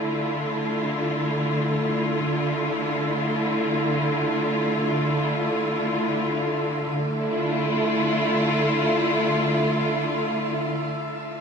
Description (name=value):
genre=ambient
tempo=free time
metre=none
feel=none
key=D minor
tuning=A4 = 439 Hz
part: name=dark studio string section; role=sustained chords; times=0.0-10.8 s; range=D3 to F4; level=-22 LUFS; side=equal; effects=none
room=wet shimmer reverb, RT60 8.8 s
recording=none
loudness=-21 LUFS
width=side -6 dB against mid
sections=0.0-6.9 A section; 6.9-10.1 B section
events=fade-in on string section 0.0-6.9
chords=0.0 Dm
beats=free time